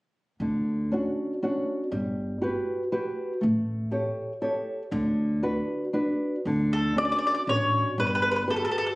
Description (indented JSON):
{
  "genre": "italian folk, Italian serenade",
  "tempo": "119 BPM",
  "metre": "3/4",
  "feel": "rubato",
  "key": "D major",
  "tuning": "A4 = 442 Hz",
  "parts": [
    { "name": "nylon-string guitar", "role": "accompaniment", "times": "0.4-8.9 s", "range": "D3 to C#5", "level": "-28 LUFS", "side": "equal", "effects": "none" },
    { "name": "upright bass", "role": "bass", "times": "0.4-8.6 s", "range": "G1 to D2", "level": "-29 LUFS", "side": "equal", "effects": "none" },
    { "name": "mandolin", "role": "melody", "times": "6.7-8.9 s", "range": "A4 to D5", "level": "-24 LUFS", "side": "left 1 dB", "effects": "none" }
  ],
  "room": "moderate studio reverb, RT60 0.5 s",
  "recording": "recorded on a phone in the room, studio reverb, compression",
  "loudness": "-25 LUFS",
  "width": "side -21 dB against mid",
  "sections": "0.4-6.5 A section; 6.5-9.0 B section",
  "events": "none",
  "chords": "0.4 Dmaj7; 1.9 Gmaj7; 3.4 A7; 4.9 D6; 6.5 Dmaj7; 8.0 Gmaj7"
}